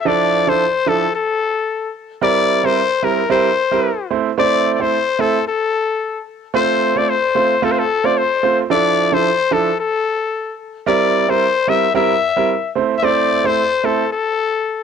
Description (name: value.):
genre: afrobeats.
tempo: 111 BPM.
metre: 4/4.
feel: swing 55% on 16ths.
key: D minor.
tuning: A4 = 440 Hz.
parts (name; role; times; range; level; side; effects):
growling trumpet; melody; 0.0-14.8 s; A4 to E5; -17 LUFS; left 6 dB; cassette tape, analog delay.
clear concert grand piano; accompaniment; 0.1-14.0 s; F3 to C5; -17 LUFS; right 10 dB; cassette tape.
room: light reverb.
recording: home recording on cassette.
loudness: -14 LUFS.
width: side -7 dB against mid.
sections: 0.1-14.8 A section.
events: none.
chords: 0.1 Dmadd9; 2.2 C7; 4.1 Am; 6.5 F; 8.7 Dmadd9; 10.9 C7; 12.8 Am.